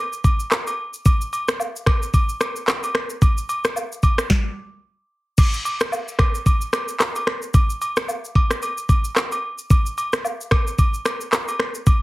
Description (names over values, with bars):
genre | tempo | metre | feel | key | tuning
afrobeats | 111 BPM | 4/4 | swing 58% on 16ths | none | none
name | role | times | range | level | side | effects
afro-pop drum kit | drums | 0.1-12.0 s | crash cymbal, finger snaps, handclaps, kick drum, rim click, shaker, snare drum | -18 LUFS | equal | none
agogo bells and woodblock | percussion | 0.2-12.0 s | none | -26 LUFS | equal | none
room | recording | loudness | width
little or no reverb | heavily compressed radio sound, multiband compression | -18 LUFS | side -19 dB against mid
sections
0.0-5.4 A section; 5.4-12.0 A section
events
stop 4.3-5.4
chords
none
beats
0.52 | 1.05 1.60 2.14 2.68 | 3.22 3.76 4.30 4.84 | 5.38 5.92 6.46 7.00 | 7.54 8.08 8.62 9.16 | 9.70 10.24 10.79 11.33 | 11.87